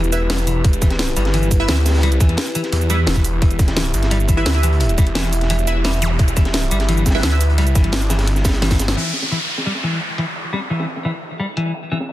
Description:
dark technical drum and bass; 173 BPM; 4/4; straight; E minor; A4 = 440 Hz
dark analog pad; sustained chords; 0.0-12.1 s; E4 to G5; -27 LUFS; equal; chorus, sidechain pumping
filtered dub chord stab; stabs; 0.0-8.4 s; E4 to E5; -26 LUFS; right 3 dB; phaser, analog chorus, tape echo
snarling distorted saw bass; bass; 0.0-9.0 s; E1 to E2; -18 LUFS; equal; distortion, overdrive, sidechain pumping
drum and bass drum kit; drums; 0.0-11.6 s; crash cymbal, hi-hat, shaker, snare drum; -23 LUFS; equal; low-pass filter on hats, low-pass filter on perc, low-pass filter on snare, low-pass filter on toms, low-pass filter on cymbals
crunchy breakbeat drum kit; drums; 0.1-12.1 s; hi-hat, snare drum; -29 LUFS; equal; high-pass filter on hats, low-pass filter on hats, high-pass filter on snare, low-pass filter on snare, high-pass filter on room, low-pass filter on room
clean electric guitar; arpeggios; 0.3-12.0 s; E3 to G3; -25 LUFS; left 2 dB; wide subtle chorus, sidechain pumping, low-pass filter, tape echo
electronic kick drum; drums; 0.6-8.8 s; -15 LUFS; equal
zap and downlifter; sound effects; 6.0-6.1, 9.0-11.7 s; -25 LUFS; equal
light reverb, digital ambience; dense, heavily limited modern master; -15 LUFS; side -15 dB against mid
0.0-9.0 A section; 9.0-12.1 B section
drop 0.0-9.0; drum fill 8.4-9.0; band accent 8.9; filter sweep on clean electric guitar 9.0-12.1
0.0 Em

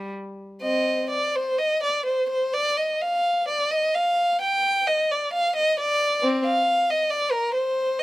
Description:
classical, baroque-style suite movement for unaccompanied violin; 60-68 BPM; 4/4; rubato; C minor; A4 = 440 Hz
warm violin; solo; 0.0-8.0 s; C4 to G5; -21 LUFS; equal
light reverb; close, detailed microphones; -21 LUFS; side -16 dB against mid
0.0-8.0 A section

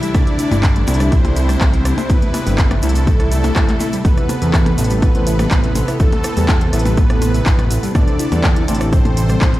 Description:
melodic techno; 123 BPM; 4/4; straight; A minor; A4 = 440 Hz
wide unison lead; melody; 0.0-9.6 s; A3 to E4; -24 LUFS; equal; analog chorus, sidechain pumping, tape echo
soft supersaw; second line; 0.0-9.6 s; A4 to E5; -28 LUFS; right 1 dB; vintage 12-bit sampler grit, sidechain pumping, tape echo
clear studio string section; sustained chords; 0.0-9.6 s; C3 to E4; -30 LUFS; equal; sidechain pumping
soft round pluck; arpeggios; 0.0-9.6 s; G3 to C6; -26 LUFS; equal; chorus, sidechain pumping, tape echo
analog synth brass; stabs; 0.0-9.6 s; C3 to A4; -24 LUFS; equal; chorus, sidechain pumping, tape echo
techno drum kit; drums; 0.0-9.6 s; handclaps, hi-hat, percussion blips, rim click; -23 LUFS; left 2 dB; overdrive, sidechain pumping on hats, sidechain pumping on perc
egg shaker; percussion; 0.0-9.5 s; -34 LUFS; right 1 dB
fat analog bass; bass; 0.1-9.6 s; G1 to E2; -18 LUFS; equal; sidechain pumping
electronic kick drum; drums; 0.1-9.5 s; -15 LUFS; equal; overdrive
swell; sound effects; 3.3-4.0 s; -32 LUFS; right 1 dB
little or no reverb; played on a big sound system in a bare room, stone room reverb; -13 LUFS; side -16 dB against mid
0.0-9.6 A section
0.0 C6; 4.0 Amadd9

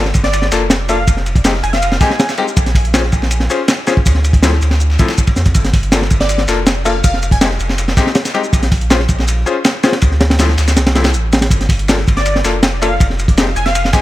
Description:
drum and bass, jungle; 161 BPM; 4/4; straight; A4 = 440 Hz
saturated sub bass; bass; 0.0-13.9 s; F1 to F2; -16 LUFS; equal
crunchy breakbeat drum kit; drums; 0.1-14.0 s; kick drum, ride cymbal, snare drum; -14 LUFS; equal
dusty soul sampler-style drum kit; drums; 0.1-14.0 s; hi-hat, shaker, snare drum; -23 LUFS; left 1 dB; high-pass filter on snare, high-pass filter on perc, high-pass filter on hats, high-pass filter on room
plucky unison lead; melody; 0.2-2.3, 6.2-7.5, 12.2-14.0 s; D5 to Ab5; -21 LUFS; equal; dub echo
bright concert grand piano; stabs; 0.5-14.0 s; F3 to C5; -20 LUFS; left 4 dB; dub echo
small room ambience; -11 LUFS; side -15 dB against mid
0.0-14.0 A section
0.0 Gm7; 1.1 Fm7; 2.6 Bbm7; 4.1 Dm; 5.5 Gm7; 7.0 Fm7; 8.5 Bbm7; 10.0 D7(no3); 11.5 Gm7; 13.0 Fm7

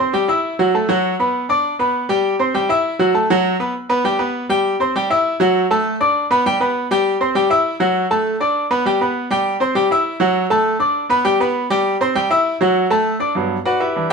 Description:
latin; 200 BPM; 4/4; straight; G major; A4 = 439 Hz
bright baby grand piano; solo; 0.0-14.1 s; G2 to E6; -15 LUFS; equal
moderate studio reverb, RT60 0.7 s; band playing live in one room; -15 LUFS; side -5 dB against mid
0.0-3.7 A section; 3.7-13.4 B section
0.1 Emadd9; 0.7 F#madd11; 1.3 Bm; 1.9 Gadd11; 2.5 Emadd9; 3.1 F#madd11; 3.7 G; 4.3 Gadd11; 4.9 Emadd9; 5.5 D; 6.1 G; 6.7 Gadd11; 7.3 Emadd9; 7.9 D; 8.5 G; 9.1 Gadd11; 9.7 Emadd9; 10.3 D; 10.9 G; 11.6 Gadd11; 12.2 Emadd9; 12.8 D; 13.4 Gmaj7

